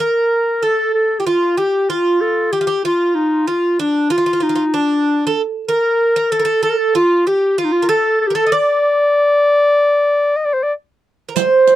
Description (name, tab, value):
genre	Turkish makam ensemble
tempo	190 BPM (eighths)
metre	9/8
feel	straight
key	D makam kurdi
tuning	A4 = 440 Hz
part	warm clarinet	melody	0.0-11.8 s	D4 to Eb5	-14 LUFS	left 1 dB	none
part	Greek bouzouki	second line	0.0-11.8 s	D4 to Eb5	-19 LUFS	right 6 dB	none
part	riq	percussion	11.4-11.8 s	none	-21 LUFS	right 22 dB	none
room	light reverb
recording	dry, close 1970s-style studio recording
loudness	-13 LUFS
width	side -14 dB against mid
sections	0.0-11.4 A section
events	none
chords	none